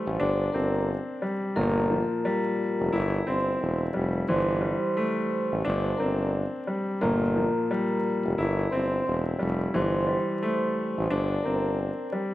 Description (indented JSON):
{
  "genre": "hip hop, boom-bap hip-hop",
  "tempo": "88 BPM",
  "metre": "4/4",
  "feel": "swing 60% on 16ths",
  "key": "unclear",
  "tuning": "A4 = 438 Hz",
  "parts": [
    { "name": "vibraphone with soft mallets", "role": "melody", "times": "0.0-11.7 s", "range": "Bb4 to C6", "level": "-30 LUFS", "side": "right 1 dB", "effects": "high-pass filter, low-pass filter, digital delay" },
    { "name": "warm grand piano", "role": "accompaniment", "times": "0.0-12.3 s", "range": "Bb2 to E4", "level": "-28 LUFS", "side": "left 1 dB", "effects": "high-pass filter, low-pass filter" },
    { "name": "clear tuba", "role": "bass", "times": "0.1-11.9 s", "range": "E1 to A1", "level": "-28 LUFS", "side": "equal", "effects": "none" }
  ],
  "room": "light reverb, small room ambience",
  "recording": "dark, warm production, vinyl crackle",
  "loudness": "-24 LUFS",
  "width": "side -15 dB against mid",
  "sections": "0.0-12.3 A section",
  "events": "none",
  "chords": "0.2 Bb69/G; 1.6 Gm7; 2.9 C7/G; 4.3 Am7/G; 5.6 Bb69/G; 7.0 Gm7; 8.4 C7/G; 9.7 Am7/G; 11.1 Bb69/G"
}